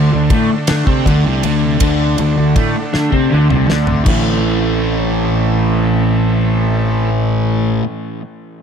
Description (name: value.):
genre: psychedelic rock.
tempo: 53 BPM (dotted quarters).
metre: 6/8.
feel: straight.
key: A minor.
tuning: A4 = 444 Hz.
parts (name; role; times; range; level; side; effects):
overdriven combo organ; sustained chords; 0.0-7.1 s; D3 to A4; -24 LUFS; right 6 dB; none.
fuzz guitar; riff; 0.0-7.8 s; A2 to D4; -15 LUFS; equal; distortion, phaser, analog delay.
fuzz fingered electric bass; bass; 0.0-7.8 s; A1 to D3; -18 LUFS; equal; overdrive.
damped 70s drum kit; drums; 0.3-4.2 s; crash cymbal, kick drum, ride cymbal, snare drum, toms; -19 LUFS; equal; analog delay.
room: small room ambience.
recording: echo-heavy mix.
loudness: -12 LUFS.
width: side -7 dB against mid.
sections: 0.0-4.1 A section; 4.1-6.3 B section.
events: drum fill 2.9-4.1.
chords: 0.0 D5; 4.1 Am.